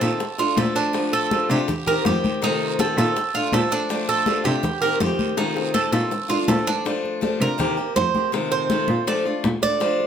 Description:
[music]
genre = latin, Cuban son and guajira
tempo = 163 BPM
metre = 4/4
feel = straight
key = Bb major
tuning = A4 = 440 Hz
[part]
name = picked steel-string acoustic guitar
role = accompaniment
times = 0.0-10.1 s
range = C3 to G4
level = -24 LUFS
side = left 3 dB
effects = none
[part]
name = Cuban tres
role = arpeggios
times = 0.0-10.1 s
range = D4 to D5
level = -23 LUFS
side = right 5 dB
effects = none
[part]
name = dark cello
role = bass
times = 0.0-9.5 s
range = F2 to C3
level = -24 LUFS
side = equal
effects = none
[part]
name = bongos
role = percussion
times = 0.0-10.1 s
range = none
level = -31 LUFS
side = left 5 dB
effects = none
[part]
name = congas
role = percussion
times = 0.0-10.1 s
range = none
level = -28 LUFS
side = left 3 dB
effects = none
[part]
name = guiro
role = percussion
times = 0.0-6.9 s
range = none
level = -35 LUFS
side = right 8 dB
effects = none
[sound]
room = moderate studio reverb, RT60 0.8 s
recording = none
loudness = -19 LUFS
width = side -8 dB against mid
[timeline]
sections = 0.0-6.9 A section; 6.9-10.1 B section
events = drum fill 5.4-6.9; Cuban tres solo 6.9-10.1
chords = 0.2 Bbmaj7 (rootless); 1.7 Cm7; 2.4 F7; 3.2 Bbmaj7 (rootless); 4.6 Cm7; 5.4 F7; 6.1 Bbmaj7 (rootless); 6.9 Bbmaj7; 7.6 Cm7; 8.3 F7; 9.1 Bbmaj7 (rootless)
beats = 0.21 0.58 | 0.95 1.32 1.69 2.06 | 2.42 2.79 3.16 3.53 | 3.90 4.27 4.64 5.01 | 5.38 5.75 6.12 6.49 | 6.85 7.22 7.59 7.96 | 8.33 8.70 9.07 9.44 | 9.81

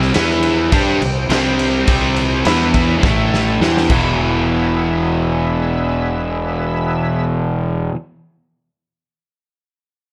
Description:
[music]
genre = blues rock power trio and southern rock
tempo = 104 BPM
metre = 4/4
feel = straight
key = E minor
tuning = A4 = 441 Hz
[part]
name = overdriven tonewheel organ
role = sustained chords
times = 0.0-7.3 s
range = A3 to G5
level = -28 LUFS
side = equal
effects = chorus vibrato, slow rotary speaker
[part]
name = overdriven electric guitar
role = riff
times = 0.0-8.0 s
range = E2 to G4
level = -19 LUFS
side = equal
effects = none
[part]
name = fuzz fingered electric bass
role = bass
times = 0.0-7.9 s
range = E1 to G2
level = -23 LUFS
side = equal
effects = overdrive
[part]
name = raw garage drum kit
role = drums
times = 0.0-4.0 s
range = crash cymbal, kick drum, snare drum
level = -21 LUFS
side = equal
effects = none
[sound]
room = small room ambience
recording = none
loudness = -16 LUFS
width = mono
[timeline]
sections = 0.0-4.2 A section; 4.2-6.5 B section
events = drum fill 3.0-4.2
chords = 0.1 E5; 0.7 C5; 2.5 E5; 3.0 A5; 3.6 C5; 3.9 E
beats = 0.15 0.73 1.30 | 1.88 2.46 3.03 3.61 | 4.19 4.76 5.34 5.91

